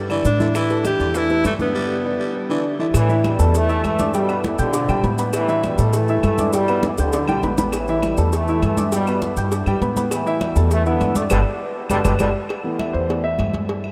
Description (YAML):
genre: latin, salsa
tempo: 201 BPM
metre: 4/4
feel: straight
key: unclear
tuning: A4 = 439 Hz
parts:
  - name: warm baby grand piano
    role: accompaniment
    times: 0.0-13.5 s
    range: D3 to G6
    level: -25 LUFS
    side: equal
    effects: none
  - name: upright bass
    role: bass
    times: 0.0-13.9 s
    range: G1 to B2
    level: -24 LUFS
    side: equal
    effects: none
  - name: breathy baritone saxophone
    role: second line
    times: 0.1-2.9 s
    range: D3 to G3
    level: -32 LUFS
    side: equal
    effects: none
  - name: bongos and cowbell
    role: percussion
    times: 0.1-13.8 s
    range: none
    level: -32 LUFS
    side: equal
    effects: none
  - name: claves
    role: percussion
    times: 0.1-13.9 s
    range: none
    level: -39 LUFS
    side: equal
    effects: none
  - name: congas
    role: percussion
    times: 0.1-13.9 s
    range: none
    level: -30 LUFS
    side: equal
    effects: none
  - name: maracas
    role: percussion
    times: 0.1-12.3 s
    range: none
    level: -38 LUFS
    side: equal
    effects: none
  - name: clear tenor saxophone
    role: melody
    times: 0.3-2.6 s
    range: A3 to G4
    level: -26 LUFS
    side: equal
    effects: none
  - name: mellow trombone section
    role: melody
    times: 3.0-12.3 s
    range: F2 to B3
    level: -26 LUFS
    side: equal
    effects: none
room: wet huge ambient reverb, RT60 7.8 s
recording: in a vast, echoing space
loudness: -20 LUFS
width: mono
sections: 0.0-2.9 A section; 2.9-12.5 B section; 12.5-13.9 C section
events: break 1.7-2.9; drum fill 6.8-7.7, 11.9-12.5; band accent 11.3-12.5; grand piano solo 12.5-13.9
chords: 0.0 G5; 0.5 Asus2; 1.7 G; 2.9 Asus2; 4.1 G; 5.3 Asus2; 6.5 G; 7.7 Asus2; 8.9 G; 10.1 Asus2; 11.3 G; 12.5 Asus2